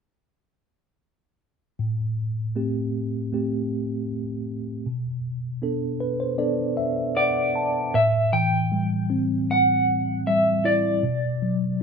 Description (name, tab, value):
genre	acoustic folk-pop ballad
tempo	78 BPM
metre	4/4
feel	straight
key	A dorian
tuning	A4 = 441 Hz
part	mellow tine electric piano	accompaniment	1.8-11.8 s	A2 to A5	-24 LUFS	equal	medium stereo tremolo
part	electric guitar through a small old amp	melody	7.2-11.8 s	D5 to G5	-22 LUFS	equal	tremolo
room	light reverb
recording	minimal, uncompressed stereo recording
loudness	-22 LUFS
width	side -6 dB against mid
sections	1.8-7.9 A section; 7.9-11.8 B section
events	none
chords	1.8 Am7; 4.9 Bm7; 7.9 Am7; 11.0 Bm